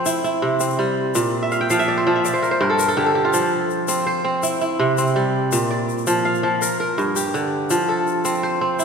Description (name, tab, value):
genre	west african traditional, West African string and xylophone music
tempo	110 BPM (dotted quarters)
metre	12/8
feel	straight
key	F major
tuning	A4 = 442 Hz
part	kora	arpeggios	0.0-8.8 s	G2 to G5	-18 LUFS	right 1 dB	none
part	tube shaker	percussion	0.1-8.8 s	none	-29 LUFS	left 10 dB	none
room	wet church reverb, RT60 2.7 s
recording	recorded in a church or concert hall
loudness	-17 LUFS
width	side -6 dB against mid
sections	0.0-8.8 A section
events	kora fill 1.4-3.3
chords	0.1 C; 1.2 Bb5; 2.2 G5; 3.3 F5; 4.4 C; 5.5 Bb; 6.6 Gm; 7.7 F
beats	0.06 0.61 | 1.15 1.70 2.25 2.79 | 3.34 3.88 4.43 4.97 | 5.52 6.07 6.61 7.16 | 7.70 8.25 8.79